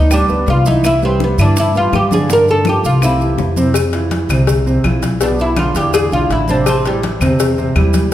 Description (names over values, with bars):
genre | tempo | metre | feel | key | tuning
Afro-Cuban jazz | 165 BPM | 4/4 | straight | C major | A4 = 440 Hz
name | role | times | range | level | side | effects
oud | melody | 0.0-7.0 s | G3 to Bb4 | -16 LUFS | equal | none
dark concert grand piano | accompaniment | 0.0-8.1 s | B2 to G5 | -17 LUFS | right 2 dB | none
upright bass | bass | 0.0-8.1 s | A1 to G2 | -16 LUFS | equal | none
bongos and cowbell | percussion | 0.1-8.1 s | none | -22 LUFS | left 6 dB | none
claves | percussion | 0.1-7.9 s | none | -29 LUFS | left 2 dB | none
congas | percussion | 0.1-8.1 s | none | -23 LUFS | left 2 dB | none
maracas | percussion | 0.1-8.1 s | none | -30 LUFS | right 6 dB | none
room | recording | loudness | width
wet recital hall reverb, RT60 1.8 s | recorded in a church or concert hall | -11 LUFS | side -12 dB against mid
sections
0.0-3.8 A section; 3.8-8.1 A section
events
oud solo 0.0-8.1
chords
0.0 G; 2.3 G5; 3.0 C; 3.8 F5; 5.2 Bdim; 5.9 E5; 6.7 Am7